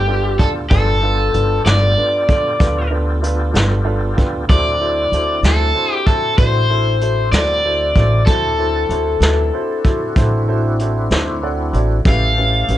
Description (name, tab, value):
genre	slow blues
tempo	64 BPM (dotted quarters)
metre	12/8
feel	straight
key	D mixolydian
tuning	A4 = 440 Hz
part	overdriven electric guitar	melody	0.0-12.8 s	G4 to F5	-18 LUFS	left 2 dB	plate reverb
part	tonewheel organ	sustained chords	0.0-12.8 s	A3 to A4	-27 LUFS	equal	slow rotary speaker, chorus vibrato
part	upright bass	bass	0.0-12.8 s	G1 to D2	-18 LUFS	equal	none
part	clear upright piano	accompaniment	0.1-12.8 s	C#4 to G5	-24 LUFS	right 3 dB	none
part	vintage brush drum kit	drums	0.4-12.8 s	hi-hat, kick drum, snare drum	-17 LUFS	equal	none
room	light reverb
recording	dark, warm production, nothing above 10.5 kHz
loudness	-13 LUFS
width	side -13 dB against mid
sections	0.0-12.8 A section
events	upright piano fill 3.5-4.5, 11.1-12.1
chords	0.0 G9; 4.5 D9; 12.1 A9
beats	| 0.71 1.66 2.60 3.55 | 4.49 5.44 6.38 7.33 | 8.27 9.22 10.16 11.11 | 12.05